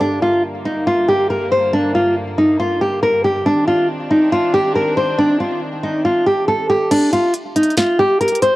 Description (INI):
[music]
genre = hip hop, trap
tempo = 139 BPM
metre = 4/4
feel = half-time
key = G minor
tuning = A4 = 440 Hz
[part]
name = nylon-string guitar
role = melody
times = 0.0-8.6 s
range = D4 to C5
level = -14 LUFS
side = equal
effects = cassette tape, tape echo
[part]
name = dark studio string section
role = sustained chords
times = 0.0-6.9 s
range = G2 to D4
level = -26 LUFS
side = equal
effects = cassette tape
[part]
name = trap drum kit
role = drums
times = 6.9-8.5 s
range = crash cymbal, hi-hat, snare drum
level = -24 LUFS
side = equal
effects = none
[sound]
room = light reverb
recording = home recording on cassette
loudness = -14 LUFS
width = side -17 dB against mid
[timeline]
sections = 0.0-6.9 A section; 6.9-8.6 B section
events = kick muted 6.9-8.6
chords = 0.0 Gm; 3.5 Cmadd9; 6.9 N.C.